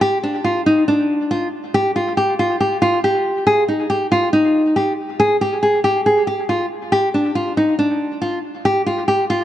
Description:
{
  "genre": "hip hop",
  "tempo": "139 BPM",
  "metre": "4/4",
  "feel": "half-time",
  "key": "unclear",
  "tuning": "A4 = 440 Hz",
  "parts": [
    { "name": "nylon-string guitar", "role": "solo", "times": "0.0-9.4 s", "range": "D4 to Ab4", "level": "-15 LUFS", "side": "equal", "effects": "low-pass filter, dub echo" }
  ],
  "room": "moderate plate reverb, RT60 2.7 s",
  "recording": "echo-heavy mix, nothing above 10.7 kHz",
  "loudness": "-15 LUFS",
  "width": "side -12 dB against mid",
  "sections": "0.0-9.4 A section",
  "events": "none",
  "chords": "none"
}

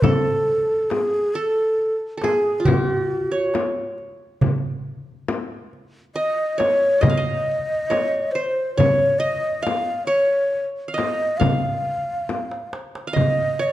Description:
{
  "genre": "Arabic maqam ensemble",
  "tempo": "137 BPM (eighths)",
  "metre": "10/8",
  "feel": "straight",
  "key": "F maqam saba",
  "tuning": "A4 = 440 Hz",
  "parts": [
    { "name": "breathy mellow ney", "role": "melody", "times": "0.0-13.7 s", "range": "Gb4+47c to F5", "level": "-21 LUFS", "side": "equal", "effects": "none" },
    { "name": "qanun", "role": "second line", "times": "0.0-13.7 s", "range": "F4 to F5", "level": "-25 LUFS", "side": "right 2 dB", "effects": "none" },
    { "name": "darbuka", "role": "percussion", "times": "0.0-13.4 s", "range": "none", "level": "-24 LUFS", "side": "right 3 dB", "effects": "none" },
    { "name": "frame drum", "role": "percussion", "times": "0.0-13.4 s", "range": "none", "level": "-24 LUFS", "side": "left 4 dB", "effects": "none" }
  ],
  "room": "moderate recital hall reverb, RT60 1.5 s",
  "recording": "dark, warm production",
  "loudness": "-19 LUFS",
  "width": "side -14 dB against mid",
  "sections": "0.0-13.2 A section",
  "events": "drum fill 12.3-13.2",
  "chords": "none"
}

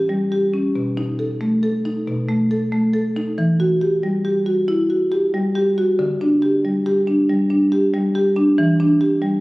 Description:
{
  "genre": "classical, contemporary piece for solo marimba",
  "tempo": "92 BPM",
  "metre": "4/4",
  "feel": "rubato",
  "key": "E minor",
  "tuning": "A4 = 440 Hz",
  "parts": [
    { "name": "marimba with soft mallets", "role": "solo", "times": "0.0-9.4 s", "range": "B2 to A4", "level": "-16 LUFS", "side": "equal", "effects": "none" }
  ],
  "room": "moderate concert hall reverb, RT60 2.2 s",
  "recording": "recorded on a phone in the room, studio reverb, compression",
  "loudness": "-16 LUFS",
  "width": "side -21 dB against mid",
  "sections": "0.0-9.4 A section",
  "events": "none",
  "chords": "0.0 A7 (rootless); 0.8 B7; 3.4 Emadd9; 6.0 Dsus4; 8.6 Em7"
}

